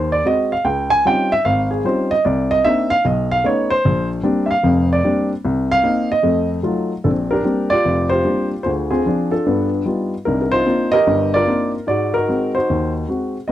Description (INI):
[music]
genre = solo jazz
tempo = 150 BPM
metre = 4/4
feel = swing 66% on 8ths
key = Bb major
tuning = A4 = 440 Hz
[part]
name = dark baby grand piano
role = solo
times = 0.0-13.5 s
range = F1 to Ab5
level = -15 LUFS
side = equal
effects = none
[sound]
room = light reverb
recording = dry, close 1970s-style studio recording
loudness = -15 LUFS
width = side -12 dB against mid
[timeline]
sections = 0.0-7.0 A section; 7.0-13.5 B section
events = grand piano solo 0.0-7.0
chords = 0.0 Ab7; 0.6 Dbmaj9#11; 2.2 Cm9; 3.0 B9; 3.8 Bb69; 5.4 Cm7; 6.2 F7b9; 7.0 Bb69; 8.6 Dm7b5; 9.4 G7b13; 10.3 Cm11; 11.9 Ab7